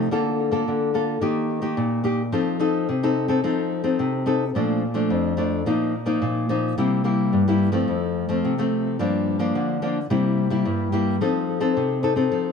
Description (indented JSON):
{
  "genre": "samba",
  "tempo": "108 BPM",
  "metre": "4/4",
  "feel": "straight",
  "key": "unclear",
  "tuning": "A4 = 440 Hz",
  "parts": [
    { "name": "nylon-string guitar", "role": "solo", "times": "0.0-12.5 s", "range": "F2 to A4", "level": "-20 LUFS", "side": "left 2 dB", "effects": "tape echo" }
  ],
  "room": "moderate small room reverb, RT60 0.5 s",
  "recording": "none",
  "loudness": "-20 LUFS",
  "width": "side -6 dB against mid",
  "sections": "0.0-12.5 A section",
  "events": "none",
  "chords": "0.1 Bbmaj7/D; 1.2 Eb; 2.3 F7; 4.6 Bbmaj7; 5.7 Ebsus2/Bb; 6.8 C7; 7.9 F; 9.0 Gm7; 10.1 C7; 11.2 F7"
}